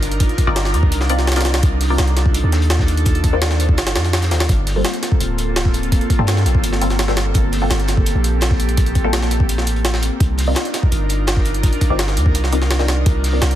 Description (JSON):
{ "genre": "drum and bass, jungle", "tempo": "168 BPM", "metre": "4/4", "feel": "straight", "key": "G minor", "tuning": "A4 = 441 Hz", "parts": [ { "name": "airy breathy pad", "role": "sustained chords", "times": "0.0-13.6 s", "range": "Bb3 to Bb4", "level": "-24 LUFS", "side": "right 1 dB", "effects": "chorus" }, { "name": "long sustained 808-style bass", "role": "bass", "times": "0.0-13.6 s", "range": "D1 to G2", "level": "-18 LUFS", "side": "equal", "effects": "tube saturation" }, { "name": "crunchy breakbeat drum kit", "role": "drums", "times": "0.0-13.5 s", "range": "hi-hat, snare drum", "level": "-32 LUFS", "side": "left 3 dB", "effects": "high-pass filter on hats, high-pass filter on snare, high-pass filter on room" }, { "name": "jungle sampler-style drum kit", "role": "drums", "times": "0.0-13.6 s", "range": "hi-hat, kick drum, snare drum", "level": "-18 LUFS", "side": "equal", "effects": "overdrive" }, { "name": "filtered dub chord stab", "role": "stabs", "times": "0.5-13.5 s", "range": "G3 to D5", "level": "-24 LUFS", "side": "left 2 dB", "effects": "phaser, lush chorus, dub echo" } ], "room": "light reverb, small room ambience", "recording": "dense, heavily limited modern master", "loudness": "-14 LUFS", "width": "side -12 dB against mid", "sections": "0.0-4.5 A section; 4.5-13.6 A section", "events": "drop 0.0-4.5, 4.5-13.6", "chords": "0.0 Cm11; 4.5 Gm11; 10.2 Cm11" }